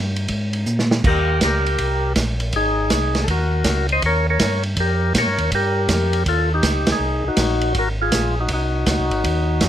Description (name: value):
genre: soul jazz organ trio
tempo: 161 BPM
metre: 4/4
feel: swing 66% on 8ths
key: Eb mixolydian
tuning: A4 = 440 Hz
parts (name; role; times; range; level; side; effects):
- mellow tonewheel organ; bass; 0.0-9.7 s; Ab1 to Bb2; -21 LUFS; equal; chorus vibrato, slow rotary speaker
- vintage drum kit; drums; 0.2-9.7 s; crash cymbal, hi-hat, kick drum, ride cymbal, snare drum; -22 LUFS; right 2 dB; none
- percussive tonewheel organ; melody; 1.1-9.7 s; Eb4 to Eb5; -20 LUFS; left 2 dB; slow rotary speaker
room: little or no reverb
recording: close, detailed microphones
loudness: -17 LUFS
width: side -11 dB against mid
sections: 0.0-1.0 A section; 1.0-9.7 B section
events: drum fill 0.7-1.0; band accent 6.8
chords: 0.0 Bb7(no3); 1.0 Eb7; 2.5 Ab9; 4.0 Eb9; 7.0 Ab9